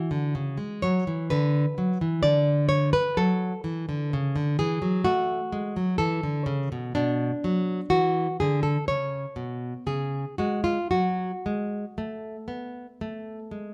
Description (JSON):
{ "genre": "classical, baroque-style dance for nylon-string guitar", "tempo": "56-65 BPM", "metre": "4/4", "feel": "rubato", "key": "F# minor", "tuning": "A4 = 439 Hz", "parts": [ { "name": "nylon-string guitar", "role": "solo", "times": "0.0-13.7 s", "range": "B2 to D5", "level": "-26 LUFS", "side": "equal", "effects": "none" } ], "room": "wet studio reverb, RT60 0.9 s", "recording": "band playing live in one room", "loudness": "-26 LUFS", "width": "mono", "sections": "0.0-13.7 A section", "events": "none", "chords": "0.0 F#5; 1.3 Bm/D; 3.2 F#m; 7.0 Bmadd11; 8.9 C#5; 10.9 F#m" }